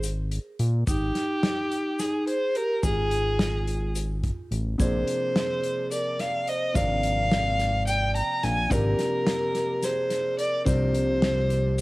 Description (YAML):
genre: progressive instrumental, band music in an uneven meter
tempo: 214 BPM (eighths)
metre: 7/8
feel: straight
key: unclear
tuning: A4 = 440 Hz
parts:
  - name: fat analog bass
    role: bass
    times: 0.0-11.8 s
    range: Ab1 to Bb2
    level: -26 LUFS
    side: equal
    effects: none
  - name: loose indie drum kit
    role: drums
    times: 0.0-11.8 s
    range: hi-hat, kick drum, snare drum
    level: -29 LUFS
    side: equal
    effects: none
  - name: tube shaker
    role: percussion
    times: 0.0-11.8 s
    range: none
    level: -40 LUFS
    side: left 5 dB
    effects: none
  - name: dark violin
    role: melody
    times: 0.9-11.8 s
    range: G4 to Bb5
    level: -27 LUFS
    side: equal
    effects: cassette tape
  - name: vibraphone with medium hard mallets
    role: second line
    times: 0.9-11.8 s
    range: Eb4 to G5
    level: -32 LUFS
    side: right 2 dB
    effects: cassette tape, tape echo
  - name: warm grand piano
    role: accompaniment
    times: 4.8-11.8 s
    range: C3 to D4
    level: -32 LUFS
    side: left 2 dB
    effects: cassette tape
room: moderate spring reverb, RT60 1.6 s, studio reverb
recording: home recording on cassette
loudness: -23 LUFS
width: side -20 dB against mid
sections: 0.0-11.8 A section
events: none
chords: 0.0 N.C.; 0.9 Ab5; 2.8 Fm/Ab; 4.8 Bb9; 10.7 Csus2